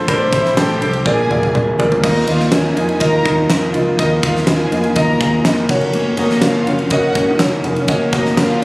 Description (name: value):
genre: piano-driven pop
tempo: 123 BPM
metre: 4/4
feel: straight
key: Eb minor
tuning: A4 = 442 Hz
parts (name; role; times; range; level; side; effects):
- mellow electric guitar; melody; 0.0-8.6 s; Bb3 to C5; -20 LUFS; left 1 dB; digital delay
- warm concert grand piano; accompaniment; 0.0-8.6 s; A2 to Eb5; -17 LUFS; equal; none
- vintage muted fingered electric bass; bass; 0.0-8.6 s; F1 to F2; -22 LUFS; equal; none
- warm symphonic violin section; second line; 0.1-8.6 s; Db4 to Bb5; -23 LUFS; equal; plate reverb
- huge arena drum kit; drums; 0.1-8.6 s; crash cymbal, kick drum, ride cymbal, snare drum, toms; -18 LUFS; equal; none
room: moderate large studio reverb, RT60 0.8 s, small room ambience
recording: recorded on a phone in the room, studio reverb, compression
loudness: -12 LUFS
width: side -23 dB against mid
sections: 0.0-2.0 A section; 2.0-8.6 A section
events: drum fill 1.1-2.0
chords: 0.1 Am7; 1.1 Bb7; 2.0 Ebsus2; 5.7 Gb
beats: | 0.09 0.58 1.06 1.55 | 2.04 2.53 3.01 3.50 | 3.99 4.48 4.96 5.45 | 5.94 6.42 6.91 7.40 | 7.89 8.38